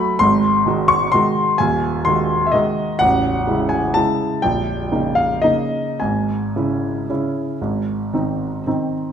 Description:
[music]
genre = classical, piano waltz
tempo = 101-135 BPM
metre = 3/4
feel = rubato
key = unclear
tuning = A4 = 441 Hz
[part]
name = clear concert grand piano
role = solo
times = 0.0-9.1 s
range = A0 to C#6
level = -16 LUFS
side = equal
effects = none
[sound]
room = moderate recital hall reverb, RT60 1.5 s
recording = minimal, uncompressed stereo recording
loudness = -16 LUFS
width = side -8 dB against mid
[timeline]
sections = 0.0-9.1 A section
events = none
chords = 0.2 G#7; 3.0 Amaj7; 4.4 D#7/A#; 6.0 C#m/G#; 7.6 G#

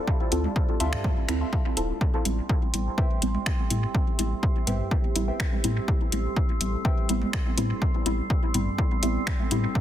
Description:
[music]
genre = dub techno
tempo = 124 BPM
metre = 4/4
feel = straight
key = A minor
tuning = A4 = 440 Hz
[part]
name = deep dark ambient pad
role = sustained chords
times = 0.0-9.8 s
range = F3 to A5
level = -38 LUFS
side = right 2 dB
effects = chorus, built-in reverb, sidechain pumping
[part]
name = electronic kick drum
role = drums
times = 0.1-9.8 s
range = none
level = -26 LUFS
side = equal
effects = none
[part]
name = deep mellow chord stab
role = stabs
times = 0.3-9.7 s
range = G3 to A4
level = -30 LUFS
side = equal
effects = chorus, phaser, sidechain pumping, dub echo
[part]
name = pure sine sub bass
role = bass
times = 0.3-9.7 s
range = D1 to A2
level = -28 LUFS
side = equal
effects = sidechain pumping
[part]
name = deep house drum kit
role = drums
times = 0.3-9.6 s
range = finger snaps, hi-hat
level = -32 LUFS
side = left 1 dB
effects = overdrive, soft clipping on snare, dub echo
[part]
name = electronic toms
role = percussion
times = 0.4-9.5 s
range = none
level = -36 LUFS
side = right 2 dB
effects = overdrive, sidechain pumping on toms, dub echo
[part]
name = warbly dusty pluck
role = riff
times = 0.8-7.1 s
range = B4 to C6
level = -38 LUFS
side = left 3 dB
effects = chorus, cassette tape, sidechain pumping, dub echo
[part]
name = drifting glass-harmonics texture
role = texture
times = 2.3-9.8 s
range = C4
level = -36 LUFS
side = right 3 dB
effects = chorus, built-in reverb, sidechain pumping
[sound]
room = digital ambience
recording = dense, heavily limited modern master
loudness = -23 LUFS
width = side -11 dB against mid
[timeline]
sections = 0.0-2.0 A section; 2.0-9.8 A section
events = none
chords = 0.0 Dm7; 2.0 Am7

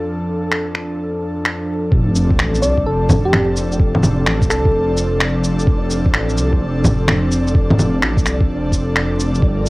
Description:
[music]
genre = future garage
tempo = 128 BPM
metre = 4/4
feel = swing 65% on 16ths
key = unclear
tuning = A4 = 440 Hz
[part]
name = airy breathy pad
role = sustained chords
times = 0.0-9.7 s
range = F2 to Bb4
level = -21 LUFS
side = equal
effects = chorus, sidechain pumping, cassette tape
[part]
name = electronic finger snaps, shaker and bongos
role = drums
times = 0.5-9.7 s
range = none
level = -17 LUFS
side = equal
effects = studio reverb, cassette tape
[part]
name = dark detuned saw bass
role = bass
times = 1.9-9.7 s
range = F1 to C2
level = -20 LUFS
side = equal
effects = sidechain pumping
[part]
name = electronic kick drum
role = drums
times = 1.9-9.5 s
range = none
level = -16 LUFS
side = equal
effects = studio reverb, cassette tape
[part]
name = sub drop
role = sound effects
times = 1.9-3.8 s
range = none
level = -23 LUFS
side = equal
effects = none
[part]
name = flickering grainy texture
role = texture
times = 2.2-9.7 s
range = D5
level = -31 LUFS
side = right 1 dB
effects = built-in reverb, cassette tape
[part]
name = soft struck synth lead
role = melody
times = 2.6-5.2 s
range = G4 to D5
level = -21 LUFS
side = equal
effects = chorus, cassette tape, tape echo
[sound]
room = digital ambience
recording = home recording on cassette, vinyl crackle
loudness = -14 LUFS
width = side -21 dB against mid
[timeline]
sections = 0.0-1.9 A section; 1.9-9.7 B section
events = impact 1.9-3.8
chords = 0.0 F6

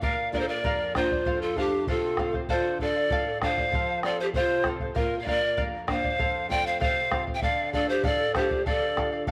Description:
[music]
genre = andean folk, Andean ensemble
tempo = 97 BPM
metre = 2/4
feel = straight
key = unclear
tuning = A4 = 440 Hz
[part]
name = breathy bright polished pan flute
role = melody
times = 0.0-9.2 s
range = G4 to G5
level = -29 LUFS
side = equal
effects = none
[part]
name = breathy mellow pan flute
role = second line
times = 0.0-9.2 s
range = D4 to E5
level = -34 LUFS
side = equal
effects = none
[part]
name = charango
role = accompaniment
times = 0.0-9.3 s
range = A4 to F5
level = -36 LUFS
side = equal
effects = none
[part]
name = nylon-string guitar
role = accompaniment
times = 0.0-9.3 s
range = F2 to A4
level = -38 LUFS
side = equal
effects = none
[part]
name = bombo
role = percussion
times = 0.0-9.3 s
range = none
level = -34 LUFS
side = equal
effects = none
[sound]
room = moderate echo chamber reverb, RT60 2.2 s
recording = none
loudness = -26 LUFS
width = mono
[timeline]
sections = 0.0-9.3 A section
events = none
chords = 0.0 Bb; 1.3 F; 2.5 Dm; 3.7 F; 5.0 Bb; 6.2 F; 7.4 Dm

